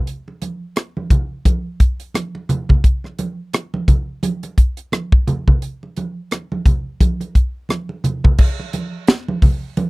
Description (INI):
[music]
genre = soul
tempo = 87 BPM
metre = 4/4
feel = swing 58% on 16ths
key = none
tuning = none
[part]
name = tight funk drum kit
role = drums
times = 0.1-9.9 s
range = crash cymbal, hi-hat, kick drum, rim click, snare drum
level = -14 LUFS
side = equal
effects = none
[part]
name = congas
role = percussion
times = 0.3-9.9 s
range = none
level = -22 LUFS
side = right 2 dB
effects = none
[sound]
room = little or no reverb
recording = dry, close 1970s-style studio recording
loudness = -16 LUFS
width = side -24 dB against mid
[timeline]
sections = 0.0-8.4 A section; 8.4-9.9 B section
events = none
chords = none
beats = | 0.07 0.76 1.46 2.15 | 2.84 3.54 4.23 4.92 | 5.62 6.31 7.00 7.69 | 8.38 9.08 9.77